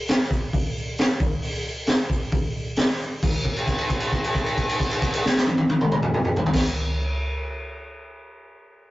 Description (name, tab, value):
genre	rock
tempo	134 BPM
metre	4/4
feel	straight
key	none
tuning	none
part	raw garage drum kit	drums	0.1-6.6 s	crash cymbal, hi-hat, kick drum, snare drum, toms	-21 LUFS	equal	none
part	egg shaker	percussion	0.1-3.4 s	none	-53 LUFS	right 2 dB	none
room	little or no reverb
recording	rough rehearsal-room recording, tube saturation, nothing above 7.6 kHz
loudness	-21 LUFS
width	side -17 dB against mid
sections	0.0-3.2 A section; 3.2-6.8 B section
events	held note 3.2-6.5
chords	none